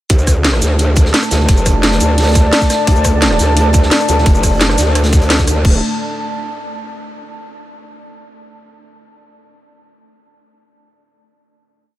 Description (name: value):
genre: dark technical drum and bass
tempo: 173 BPM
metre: 4/4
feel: straight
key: D minor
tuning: A4 = 444 Hz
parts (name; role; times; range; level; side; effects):
- dark analog pad; sustained chords; 0.1-5.8 s; A3 to A5; -18 LUFS; equal; chorus, sidechain pumping
- growl bass; bass; 0.1-5.8 s; D1 to D2; -14 LUFS; equal; chorus, overdrive
- crunchy breakbeat drum kit; drums; 0.1-5.6 s; hi-hat, snare drum; -25 LUFS; right 1 dB; none
- drum and bass drum kit; drums; 0.1-5.7 s; crash cymbal, hi-hat, rim click, shaker, snare drum; -17 LUFS; equal; none
- electronic kick drum; drums; 0.1-5.7 s; none; -12 LUFS; equal; none
room: light reverb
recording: none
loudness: -10 LUFS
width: side -14 dB against mid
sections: 0.1-5.6 drop; 5.6-7.0 final chord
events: drop 0.1-5.6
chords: 0.1 D5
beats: | 0.10 0.45 0.79 1.14 | 1.49 1.83 2.18 2.53 | 2.87 3.22 3.57 3.91 | 4.26 4.61 4.95 5.30 | 5.65